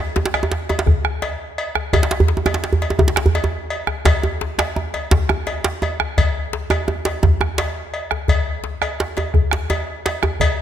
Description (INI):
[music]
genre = west african traditional, West African drum ensemble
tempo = 113 BPM (dotted quarters)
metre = 12/8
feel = straight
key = none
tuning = none
[part]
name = djembe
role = percussion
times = 0.2-10.6 s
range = none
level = -23 LUFS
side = left 5 dB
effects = none
[part]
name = djembe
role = percussion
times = 0.2-10.4 s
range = none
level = -20 LUFS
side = right 2 dB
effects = none
[part]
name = bombo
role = percussion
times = 0.3-10.6 s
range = none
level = -21 LUFS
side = right 3 dB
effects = none
[part]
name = cowbell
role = percussion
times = 0.3-10.6 s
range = none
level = -26 LUFS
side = left 2 dB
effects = none
[sound]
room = moderate scoring stage reverb, RT60 1.7 s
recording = close, detailed microphones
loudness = -17 LUFS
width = side -10 dB against mid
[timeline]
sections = 0.0-10.6 A section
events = none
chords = none